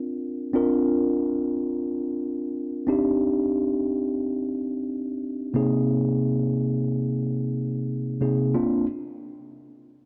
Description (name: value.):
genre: pop.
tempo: free time.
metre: none.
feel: none.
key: Bb mixolydian.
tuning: A4 = 439 Hz.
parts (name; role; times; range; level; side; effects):
mellow tine electric piano; solo; 0.0-8.9 s; C3 to Bb4; -26 LUFS; equal; none.
room: moderate lush hall reverb, RT60 2.5 s.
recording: none.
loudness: -25 LUFS.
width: mono.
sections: 0.0-8.5 A section; 8.5-10.1 B section.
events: none.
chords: 0.0 Bbadd9; 2.9 Cmadd9; 5.5 Abadd9/C; 8.5 Bbadd9.